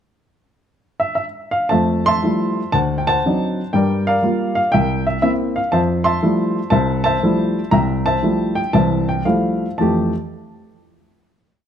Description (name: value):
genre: solo jazz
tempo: 120 BPM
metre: 4/4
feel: swing 68% on 8ths, rubato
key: F major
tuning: A4 = 440 Hz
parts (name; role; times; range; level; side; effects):
- dark baby grand piano; solo; 1.0-10.1 s; C2 to C6; -16 LUFS; equal; none
room: moderate echo chamber reverb, RT60 1.7 s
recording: dark, warm production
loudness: -16 LUFS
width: side -9 dB against mid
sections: 0.0-1.7 pickup bar; 1.7-9.8 A section; 9.8-11.7 final chord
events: none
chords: 0.0 N.C.; 1.7 Fmaj9; 2.7 D7b9; 3.7 Gm7; 4.7 C7; 5.7 Fmaj9